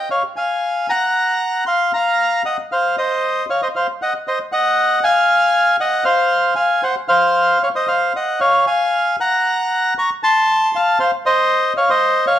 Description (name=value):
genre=tango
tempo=116 BPM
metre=4/4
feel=rubato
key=Bb minor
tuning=A4 = 438 Hz
part: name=bandoneon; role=solo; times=0.0-12.4 s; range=C5 to Db6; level=-14 LUFS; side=equal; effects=none
room=moderate large studio reverb, RT60 1.1 s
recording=band playing live in one room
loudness=-14 LUFS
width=side -11 dB against mid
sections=0.1-12.4 A section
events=none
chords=0.1 Bb5; 2.2 F5; 4.3 Cdim; 6.3 F5; 7.4 Cmadd11; 8.4 Bbm7; 10.5 F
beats=| 0.12 0.64 1.17 1.69 | 2.20 2.72 3.23 3.74 | 4.25 4.76 5.28 5.79 | 6.32 6.84 7.36 7.89 | 8.41 8.94 9.46 9.98 | 10.49 11.01 11.51 12.02